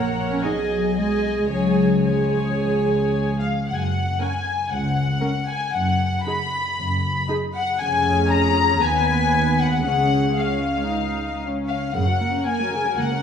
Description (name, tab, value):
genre	quick classical-period movement for string orchestra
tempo	116 BPM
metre	4/4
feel	straight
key	F# major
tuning	A4 = 440 Hz
part	warm studio violin section	melody	0.0-13.2 s	E#5 to B5	-26 LUFS	left 6 dB	none
part	rich studio violin section	second line	0.0-13.2 s	C#5 to B5	-26 LUFS	left 3 dB	none
part	warm studio viola section	accompaniment	0.0-13.2 s	C#3 to B4	-25 LUFS	right 1 dB	none
part	dark studio double bass section	bass	0.0-13.2 s	E#1 to D#2	-25 LUFS	equal	none
part	warm studio cello section	bass	0.0-13.2 s	C#2 to D#4	-26 LUFS	equal	none
room	moderate scoring stage reverb, RT60 1.7 s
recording	studio ambience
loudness	-19 LUFS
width	side -7 dB against mid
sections	0.0-3.7 A section; 3.7-13.2 B section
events	none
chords	0.4 G#m/B; 1.5 C#; 3.7 F#5; 5.7 G#m7/F# (rootless); 7.8 C#/E#; 8.8 B/D#; 9.8 C#; 12.0 F#